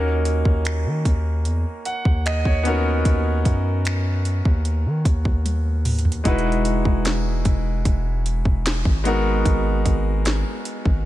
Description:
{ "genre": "contemporary R&B", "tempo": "75 BPM", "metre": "4/4", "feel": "straight", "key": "unclear", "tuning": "A4 = 440 Hz", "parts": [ { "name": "clear grand piano", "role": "accompaniment", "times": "0.0-11.1 s", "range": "G#3 to F#5", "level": "-25 LUFS", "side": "equal", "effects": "none" }, { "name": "long sustained 808-style bass", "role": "bass", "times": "0.0-11.1 s", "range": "E1 to D#3", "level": "-21 LUFS", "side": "equal", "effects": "none" }, { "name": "trap drum kit", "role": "drums", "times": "0.3-11.0 s", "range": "finger snaps, hi-hat, kick drum, snare drum, toms", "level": "-22 LUFS", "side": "equal", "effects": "vintage 12-bit sampler grit" } ], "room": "light reverb", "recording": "none", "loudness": "-18 LUFS", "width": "side -15 dB against mid", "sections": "0.0-6.3 A section; 6.3-11.1 B section", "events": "drum fill 5.5-6.3", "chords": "0.0 D#m7; 2.7 Bmaj7/D#; 6.3 Emaj9; 9.1 G#m9", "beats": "0.65 1.45 2.25 | 3.05 3.85 4.65 5.45 | 6.25 7.05 7.85 8.65 | 9.45 10.25 11.05" }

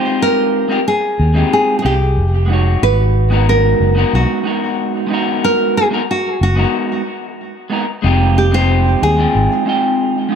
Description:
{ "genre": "sunset chillout", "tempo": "92 BPM", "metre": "4/4", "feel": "straight", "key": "unclear", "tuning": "A4 = 440 Hz", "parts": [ { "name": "nylon-string guitar", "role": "melody", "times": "0.0-10.3 s", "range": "Gb4 to C5", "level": "-17 LUFS", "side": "right 1 dB", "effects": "analog delay" }, { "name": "electric guitar through a small old amp", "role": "accompaniment", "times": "0.0-10.4 s", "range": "Ab3 to G5", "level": "-17 LUFS", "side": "equal", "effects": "auto-pan, analog delay" }, { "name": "fingered electric bass", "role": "bass", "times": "1.2-9.5 s", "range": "F1 to Eb2", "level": "-13 LUFS", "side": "equal", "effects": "tube saturation" } ], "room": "moderate spring reverb, RT60 1.8 s, small room ambience", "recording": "echo-heavy mix", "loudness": "-12 LUFS", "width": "side -7 dB against mid", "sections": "0.0-8.0 A section; 8.0-10.4 B section", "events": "break 6.7-8.0", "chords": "0.0 Fm9; 2.8 Abm9; 8.0 Fm9", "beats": "| 0.22 0.87 1.52 2.17 | 2.83 3.48 4.13 4.78 | 5.43 6.09 6.74 7.39 | 8.04 8.70 9.35 10.00" }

